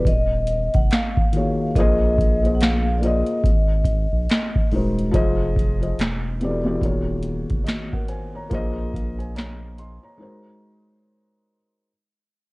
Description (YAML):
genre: lo-fi hip hop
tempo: 71 BPM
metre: 4/4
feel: swing 60% on 16ths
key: Eb dorian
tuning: A4 = 444 Hz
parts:
  - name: vibraphone with soft mallets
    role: melody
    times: 0.0-4.7 s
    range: D5 to Gb5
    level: -26 LUFS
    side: left 1 dB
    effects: none
  - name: felt-muted upright piano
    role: accompaniment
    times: 0.0-11.9 s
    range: Eb3 to C6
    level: -25 LUFS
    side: left 1 dB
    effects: none
  - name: saturated sub bass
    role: bass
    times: 0.0-10.0 s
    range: Eb1 to Bb1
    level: -24 LUFS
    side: equal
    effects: none
  - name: booming analog drum machine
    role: drums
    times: 0.1-10.0 s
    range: handclaps, hi-hat, kick drum, snare drum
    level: -22 LUFS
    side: equal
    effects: none
room: light reverb, digital ambience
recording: worn, warbling old tape, cassette tape, warbly pitch drift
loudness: -19 LUFS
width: side -24 dB against mid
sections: 0.0-5.1 A section; 5.1-11.9 B section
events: fade-out 5.1-11.9; break 10.2-11.9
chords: 0.1 Ebm11; 1.7 Bb7sus4; 3.4 Ab7; 5.1 Fm7; 6.0 Em11; 6.8 Ebm11; 8.5 Bb7sus4; 10.2 Ab7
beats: 0.06 0.90 | 1.75 2.59 3.44 4.28 | 5.13 5.97 6.82 7.66 | 8.51 9.35 10.20 11.04